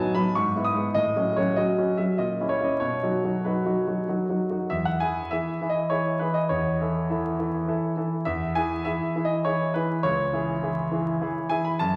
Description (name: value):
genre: classical-period piano sonatina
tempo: 94-104 BPM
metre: 3/4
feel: rubato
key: E major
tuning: A4 = 440 Hz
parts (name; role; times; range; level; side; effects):
- clear concert grand piano; solo; 0.0-12.0 s; C#2 to D#6; -26 LUFS; equal; none
room: wet recital hall reverb, RT60 1.4 s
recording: vinyl crackle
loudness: -26 LUFS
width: mono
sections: 0.0-4.7 A section; 4.7-12.0 B section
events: none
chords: 0.4 E/G#; 1.0 F#m/A; 2.2 A#dim7; 2.8 B; 4.7 E; 6.5 A/E; 8.3 E; 10.0 C#m